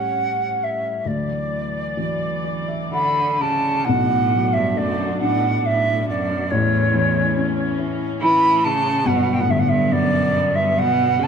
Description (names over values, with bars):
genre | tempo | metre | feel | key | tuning
celtic folk, Celtic slow air | 60-72 BPM | 3/4 | rubato | unclear | A4 = 441 Hz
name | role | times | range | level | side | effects
wooden flute | melody | 0.0-11.3 s | C#5 to B5 | -20 LUFS | right 2 dB | none
felt-muted upright piano | accompaniment | 0.0-11.3 s | G1 to A5 | -23 LUFS | left 3 dB | none
warm studio string section | sustained chords | 0.0-11.3 s | A2 to D5 | -29 LUFS | right 1 dB | none
bright cello | second line | 2.9-11.3 s | E2 to E3 | -24 LUFS | right 2 dB | none
room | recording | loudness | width
moderate scoring stage reverb, RT60 1.7 s | none | -17 LUFS | side -7 dB against mid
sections
0.0-3.9 A section; 3.9-11.3 B section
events
felt piano fill 2.0-3.9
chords
0.0 A7; 1.1 Dadd9; 3.9 Bm7; 6.5 A; 9.0 Gmaj7